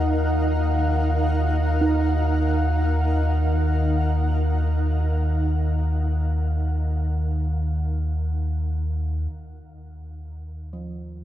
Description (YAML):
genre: dark ambient drone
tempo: free time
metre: none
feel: none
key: Eb minor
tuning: A4 = 439 Hz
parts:
  - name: granular cloud pad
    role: sustained chords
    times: 0.0-9.3 s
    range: Eb4 to Gb5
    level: -28 LUFS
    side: equal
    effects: built-in reverb
  - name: gamelan-type bossed gongs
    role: arpeggios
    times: 0.0-11.2 s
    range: F3 to Eb4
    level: -31 LUFS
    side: right 4 dB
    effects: tape echo
  - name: deep rumbling drone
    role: drone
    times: 0.0-11.2 s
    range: Eb2 to Eb3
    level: -22 LUFS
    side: equal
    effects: built-in reverb
room: wet cathedral reverb, RT60 6.1 s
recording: dark, warm production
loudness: -20 LUFS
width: side -12 dB against mid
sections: 0.0-9.3 A section; 9.3-11.2 B section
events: fade-out on ambient pad 0.0-9.3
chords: 0.0 Ebmadd9; 9.3 Ebsus2